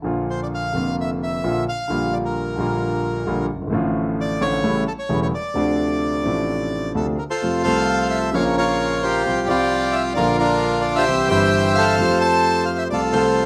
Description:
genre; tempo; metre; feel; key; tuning
tango; 130 BPM; 4/4; rubato; D minor, F major from 7.4 s; A4 = 440 Hz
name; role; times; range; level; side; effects
warm concert grand piano; accompaniment; 0.0-13.5 s; E1 to A4; -24 LUFS; equal; none
bandoneon; melody; 0.3-13.5 s; D4 to A5; -23 LUFS; equal; none
room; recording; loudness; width
light reverb; close, detailed microphones; -20 LUFS; mono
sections
0.0-7.4 A section; 7.4-13.5 B section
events
none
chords
0.0 Bb; 1.9 Gm7/Bb; 3.7 Dm/A; 4.6 A7; 5.6 Dm7; 7.4 F; 8.3 Bbm; 9.3 Fsus2/C; 10.2 Bb; 11.1 C; 12.0 Fadd9; 12.9 F/C

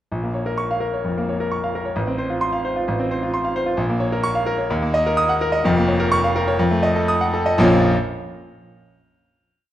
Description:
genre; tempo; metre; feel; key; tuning
classical, virtuoso piano study; 118-133 BPM; 4/4; rubato; Bb minor; A4 = 441 Hz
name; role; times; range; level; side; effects
bright grand piano; solo; 0.1-7.9 s; F1 to Eb6; -18 LUFS; equal; none
room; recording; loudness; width
wet recital hall reverb, RT60 1.5 s; dark, warm production; -18 LUFS; side -12 dB against mid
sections
0.1-7.6 A section; 7.6-9.5 final chord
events
none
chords
0.1 Bbm; 2.0 F/A; 3.8 Bbm; 4.7 Ebm; 5.6 Bbm/F; 6.6 F7b9; 7.6 Bbm

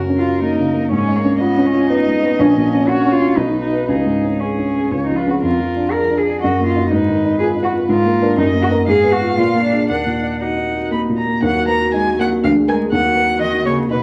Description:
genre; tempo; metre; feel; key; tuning
quick classical-period movement for piano trio; 121 BPM; 3/4; rubato; Eb minor from 5.4 s; A4 = 440 Hz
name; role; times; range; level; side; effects
muted violin; melody; 0.0-14.0 s; G#4 to Cb6; -26 LUFS; equal; none
dark baby grand piano; accompaniment; 0.0-14.0 s; A#1 to B4; -18 LUFS; equal; none
muted cello; second line; 0.2-14.0 s; Cb3 to Bb4; -22 LUFS; equal; none
room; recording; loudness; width
wet large studio reverb, RT60 1.0 s; vinyl crackle; -16 LUFS; mono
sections
0.0-11.4 A section; 11.4-14.0 B section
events
none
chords
0.0 F#; 0.9 C#7/G#; 2.4 F#/A#; 3.4 B; 3.9 C#5; 4.9 C#; 5.4 Bb7/F; 6.4 Ebm/Gb; 6.9 Fm7b5/Ab; 7.9 Bb7/Ab; 8.4 Ebm/Gb; 8.9 Fdim/Ab; 9.4 Bb7; 9.9 Ebm; 12.4 Bb7/D; 12.9 Ebm

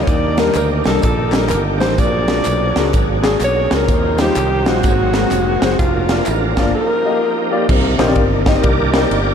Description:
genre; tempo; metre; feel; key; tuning
uptempo gospel; 126 BPM; 4/4; swing 64% on 8ths; Bb major; A4 = 439 Hz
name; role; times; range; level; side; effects
clear alto saxophone; melody; 0.0-7.5 s; F4 to D5; -20 LUFS; equal; ping-pong delay
warm grand piano; accompaniment; 0.0-9.2 s; Ab2 to Eb5; -19 LUFS; left 4 dB; lush chorus
bright tonewheel organ; sustained chords; 0.0-9.3 s; Eb3 to Eb5; -22 LUFS; right 2 dB; slow rotary speaker, overdrive, chorus vibrato
fingered electric bass; bass; 0.0-9.3 s; F1 to Eb2; -20 LUFS; equal; none
crisp fusion drum kit; drums; 0.1-9.3 s; crash cymbal, hi-hat, kick drum, ride cymbal, snare drum; -19 LUFS; right 1 dB; none
tambourine and handclaps; percussion; 0.1-6.6 s; none; -33 LUFS; left 3 dB; none
room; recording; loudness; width
moderate huge ambient reverb, RT60 9.3 s; dreamy mix soaked in reverb; -13 LUFS; side -7 dB against mid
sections
0.0-7.7 A section; 7.7-9.3 B section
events
tonewheel organ solo 7.7-9.3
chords
0.1 Ebmaj7; 2.0 Bb7alt; 3.9 Eb69; 4.8 Ab9; 5.8 Bb/F; 6.7 F9sus4; 7.7 Cm7

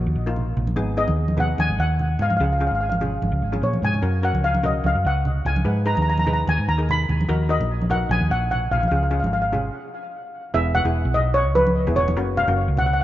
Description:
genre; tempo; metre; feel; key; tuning
calypso; 147 BPM; 4/4; swing 54% on 16ths; F# major; A4 = 440 Hz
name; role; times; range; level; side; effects
steel pan; accompaniment; 0.0-12.9 s; A#3 to B4; -30 LUFS; left 2 dB; none
hollow-body short-scale fingered electric bass; bass; 0.0-13.0 s; E1 to A#2; -22 LUFS; equal; none
congas; percussion; 0.4-12.9 s; none; -28 LUFS; right 1 dB; none
steel pan; melody; 1.0-13.0 s; B4 to B5; -23 LUFS; left 1 dB; tape echo
room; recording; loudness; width
light reverb, small room reverb; rough home demo mix, nothing above 7.5 kHz; -19 LUFS; side -14 dB against mid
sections
0.0-10.5 A section; 10.5-13.0 B section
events
drum fill 3.5-4.0; stop 9.7-10.5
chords
0.0 D#5; 0.8 G#m; 2.4 C#; 4.0 F#; 5.7 G#m; 7.3 D#m; 8.9 C#; 10.5 Eadd9; 12.2 F#

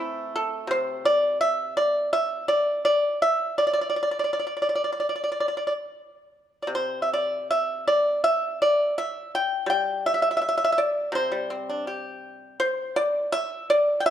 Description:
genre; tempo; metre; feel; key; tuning
chinese traditional, Chinese solo plucked strings; 72-85 BPM; 4/4; rubato; unclear; A4 = 439 Hz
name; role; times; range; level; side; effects
pipa; solo; 0.0-14.1 s; C3 to G5; -22 LUFS; equal; none
room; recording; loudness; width
moderate recital hall reverb, RT60 1.6 s; dark, warm production; -22 LUFS; side -10 dB against mid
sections
0.0-6.7 A section; 6.7-14.1 B section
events
none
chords
none

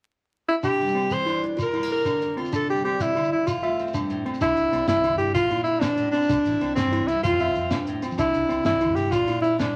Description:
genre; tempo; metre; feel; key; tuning
highlife guitar band; 127 BPM (dotted quarters); 12/8; straight; C mixolydian; A4 = 440 Hz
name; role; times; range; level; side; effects
clear alto saxophone; melody; 0.5-9.8 s; C4 to C5; -25 LUFS; equal; none
picked steel-string acoustic guitar; accompaniment; 0.6-9.8 s; F2 to F4; -36 LUFS; equal; none
tine electric piano; arpeggios; 0.6-9.8 s; C4 to E5; -31 LUFS; equal; overdrive
agogo bells; percussion; 0.6-9.8 s; none; -40 LUFS; equal; none
shekere; percussion; 0.6-9.7 s; none; -36 LUFS; equal; none
fingered electric bass; bass; 4.4-9.8 s; A1 to F3; -34 LUFS; equal; none
compact cocktail drum kit; drums; 4.4-9.7 s; hi-hat, kick drum, snare drum; -34 LUFS; equal; none
room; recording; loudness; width
moderate large studio reverb, RT60 1.3 s; vinyl crackle; -23 LUFS; mono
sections
0.6-4.4 A section; 4.4-9.8 B section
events
none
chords
0.0 N.C.; 0.6 Cadd9; 1.6 Bb; 2.5 Cadd9; 3.5 F; 4.4 Cadd9; 5.4 Bb; 6.3 Cadd9; 7.2 F; 8.2 Cadd9; 9.1 Bb

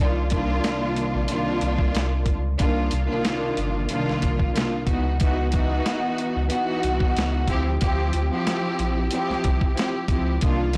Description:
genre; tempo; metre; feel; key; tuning
hip hop, boom-bap hip-hop; 92 BPM; 4/4; swing 54% on 16ths; unclear; A4 = 439 Hz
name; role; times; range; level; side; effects
warm studio string section; accompaniment; 0.0-10.8 s; C2 to G4; -26 LUFS; equal; cassette tape
sub bass with octave; bass; 0.0-10.8 s; G1 to D2; -28 LUFS; equal; none
boom bap sampler-style drum kit; drums; 0.3-10.8 s; hi-hat, kick drum, snare drum; -27 LUFS; equal; none
room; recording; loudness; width
light reverb; blown-out, overdriven recording, vinyl crackle, overdrive; -23 LUFS; mono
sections
0.0-10.8 A section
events
none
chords
0.0 Cm11; 4.9 Dbm11; 7.5 Dm11

